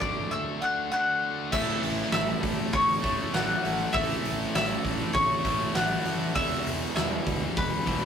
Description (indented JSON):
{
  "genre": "quiet-loud alternative rock",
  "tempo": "99 BPM",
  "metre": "4/4",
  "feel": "straight",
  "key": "A major",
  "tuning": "A4 = 440 Hz",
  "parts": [
    { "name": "mandolin", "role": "melody", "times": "0.0-8.1 s", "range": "B4 to F#6", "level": "-28 LUFS", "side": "left 2 dB", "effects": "none" },
    { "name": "overdriven electric guitar", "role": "riff", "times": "0.0-8.1 s", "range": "A2 to E4", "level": "-36 LUFS", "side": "right 6 dB", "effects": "none" },
    { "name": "scooped high-gain guitar", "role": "riff", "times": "0.0-8.1 s", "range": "E2 to D4", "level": "-35 LUFS", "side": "left 6 dB", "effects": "distortion" },
    { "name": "hollow-body short-scale picked electric bass", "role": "bass", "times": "0.0-8.1 s", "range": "E1 to D2", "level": "-38 LUFS", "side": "equal", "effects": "none" },
    { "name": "huge arena drum kit", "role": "drums", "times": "0.0-8.0 s", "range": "crash cymbal, hi-hat, kick drum, snare drum", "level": "-31 LUFS", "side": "right 1 dB", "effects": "none" },
    { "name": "distorted electric guitar", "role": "riff", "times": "1.5-8.1 s", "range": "E2 to A3", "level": "-32 LUFS", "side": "equal", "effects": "distortion" }
  ],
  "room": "moderate studio reverb, RT60 0.6 s",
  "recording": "rough rehearsal-room recording",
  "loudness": "-24 LUFS",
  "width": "side -8 dB against mid",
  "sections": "0.0-1.5 A section; 1.5-8.1 B section",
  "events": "none",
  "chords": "0.0 D; 1.5 A; 6.4 E",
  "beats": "0.33 0.93 | 1.53 2.14 2.74 3.34 | 3.95 4.55 5.16 5.76 | 6.36 6.97 7.57"
}